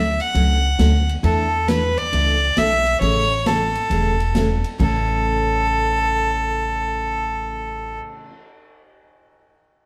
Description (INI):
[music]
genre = country, western swing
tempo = 135 BPM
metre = 4/4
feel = swing 66% on 8ths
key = A major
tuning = A4 = 440 Hz
[part]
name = clear fiddle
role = melody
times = 0.0-8.0 s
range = A4 to F#5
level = -23 LUFS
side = equal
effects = none
[part]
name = picked steel-string acoustic guitar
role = accompaniment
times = 0.0-8.3 s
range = A2 to A4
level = -28 LUFS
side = equal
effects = none
[part]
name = upright bass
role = bass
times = 0.0-8.0 s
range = E1 to E2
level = -24 LUFS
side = equal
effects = none
[part]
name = swinging big-band drum kit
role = drums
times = 0.2-8.3 s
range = crash cymbal, cymbal swell, hi-hat, kick drum, ride cymbal, snare drum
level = -30 LUFS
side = equal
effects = none
[sound]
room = moderate stone room reverb, RT60 1.0 s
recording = band playing live in one room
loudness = -19 LUFS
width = mono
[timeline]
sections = 0.0-4.8 A section; 4.8-8.4 B section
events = none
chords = 0.0 Dmaj7; 1.2 E7sus4; 3.0 Amaj7; 4.8 A